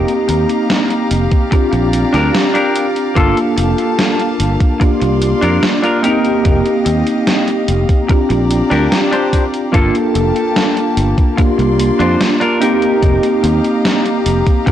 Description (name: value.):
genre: vaporwave.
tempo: 73 BPM.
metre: 4/4.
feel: straight.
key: unclear.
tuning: A4 = 440 Hz.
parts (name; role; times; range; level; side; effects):
mellow tine electric piano; accompaniment; 0.0-14.7 s; Bb3 to A4; -15 LUFS; equal; fast stereo tremolo, analog chorus, tape echo.
rich chamber string section; sustained chords; 0.0-14.7 s; Bb3 to C6; -22 LUFS; left 1 dB; none.
semi-hollow electric guitar; riff; 0.0-14.7 s; Bb3 to C5; -19 LUFS; left 2 dB; lush chorus, low-pass filter, tape echo.
fingered electric bass; bass; 0.0-14.4 s; F1 to F2; -16 LUFS; equal; none.
gated 80s digital drum machine; drums; 0.1-14.7 s; hi-hat, snare drum; -18 LUFS; equal; gated reverb, gated reverb snare, studio reverb.
electronic kick drum; drums; 1.3-14.7 s; none; -12 LUFS; equal; studio reverb.
room: light reverb, digital ambience.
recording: dry, gritty hardware recording, cassette tape.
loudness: -11 LUFS.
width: side -11 dB against mid.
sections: 0.0-14.7 A section.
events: none.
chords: 0.0 F9sus4; 1.5 Bb6; 3.2 Gm9; 4.8 C9sus4; 6.0 F9sus4; 8.1 Bb6; 9.7 Gm9; 11.4 C9sus4; 12.6 F9sus4.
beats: 0.70 1.52 2.34 | 3.17 3.99 4.81 5.63 | 6.45 7.28 8.10 8.92 | 9.74 10.56 11.38 12.21 | 13.03 13.85 14.67.